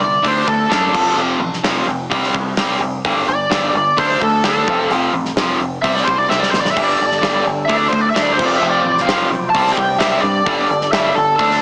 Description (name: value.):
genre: hard rock.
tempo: 129 BPM.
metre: 4/4.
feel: straight.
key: unclear.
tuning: A4 = 440 Hz.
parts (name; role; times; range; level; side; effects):
biting lead guitar; melody; 0.0-11.6 s; A4 to A5; -16 LUFS; equal; overdrive, analog delay.
distorted electric guitar; riff; 0.0-11.6 s; F2 to D4; -18 LUFS; equal; distortion.
growling picked electric bass; bass; 0.0-11.6 s; F1 to G2; -24 LUFS; equal; overdrive.
gated 80s drum kit; drums; 0.2-11.6 s; crash cymbal, hi-hat, kick drum, snare drum; -21 LUFS; equal; none.
tonewheel organ; sustained chords; 6.8-11.6 s; G3 to G5; -24 LUFS; equal; slow rotary speaker, overdrive.
room: small room ambience.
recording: heavily compressed radio sound, small speaker sound.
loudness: -13 LUFS.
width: side -39 dB against mid.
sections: 0.0-11.6 A section.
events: lead electric guitar solo 0.0-11.6; drum fill 6.3-6.8.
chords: 0.2 D; 0.9 F; 2.1 C5; 3.0 G5; 4.0 D5; 4.7 F; 5.8 C5; 6.8 G5; 7.7 D5; 8.4 F; 9.5 C5; 10.5 G5.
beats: 0.25 0.72 | 1.18 1.65 2.12 2.58 | 3.05 3.51 3.98 4.44 | 4.91 5.37 5.84 6.30 | 6.76 7.23 7.69 8.15 | 8.61 9.08 9.54 10.00 | 10.46 10.92 11.39.